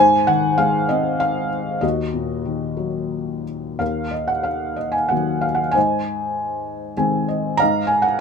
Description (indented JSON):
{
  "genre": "classical, lyrical solo piano",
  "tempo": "88-98 BPM",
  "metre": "3/4",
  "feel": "rubato",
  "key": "Eb dorian",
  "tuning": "A4 = 440 Hz",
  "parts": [
    { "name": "felt-muted upright piano", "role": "solo", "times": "0.0-8.2 s", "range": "Eb2 to Bb5", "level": "-18 LUFS", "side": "left 1 dB", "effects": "none" }
  ],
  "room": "light reverb",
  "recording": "minimal, uncompressed stereo recording",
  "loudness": "-19 LUFS",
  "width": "side -6 dB against mid",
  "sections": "0.0-3.8 A section; 3.8-8.2 B section",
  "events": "felt piano fill 6.7-7.6",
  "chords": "0.0 Ab; 1.8 Ebm; 5.8 Ab; 7.6 Fm7/Ab",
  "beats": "0.58 1.21 | 1.83 2.47 3.12 | 3.81 4.48 5.13 | 5.76 6.37 6.99 | 7.60"
}